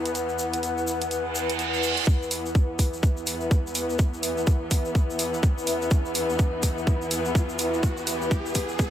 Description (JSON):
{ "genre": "bass house", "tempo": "125 BPM", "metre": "4/4", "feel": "swing 60% on 16ths", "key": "unclear", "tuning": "A4 = 440 Hz", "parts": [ { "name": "muted chamber string section", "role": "sustained chords", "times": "0.0-8.9 s", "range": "E2 to B3", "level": "-30 LUFS", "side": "left 2 dB", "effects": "sidechain pumping" }, { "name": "airy breathy pad", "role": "texture", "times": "0.0-8.9 s", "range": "E4 to F#5", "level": "-30 LUFS", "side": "equal", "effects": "chorus, sidechain pumping" }, { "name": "electronic hi-hat", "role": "drums", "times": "0.1-8.7 s", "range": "none", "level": "-29 LUFS", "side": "right 2 dB", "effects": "overdrive" }, { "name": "egg shaker", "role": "percussion", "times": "0.1-8.9 s", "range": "none", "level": "-35 LUFS", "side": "left 3 dB", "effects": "none" }, { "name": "reverse cymbal and riser", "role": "sound effects", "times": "1.3-8.9 s", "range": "none", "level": "-33 LUFS", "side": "right 3 dB", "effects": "none" }, { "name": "electronic kick drum", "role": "drums", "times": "2.1-8.9 s", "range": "none", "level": "-22 LUFS", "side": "equal", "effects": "overdrive" } ], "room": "light reverb, small room ambience", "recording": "high-pass filter", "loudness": "-22 LUFS", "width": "side -11 dB against mid", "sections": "0.0-2.1 A section; 2.1-8.9 B section", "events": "reverse cymbal 1.3-2.1; build-up 2.1-8.9; riser 2.1-8.9", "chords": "0.0 E5" }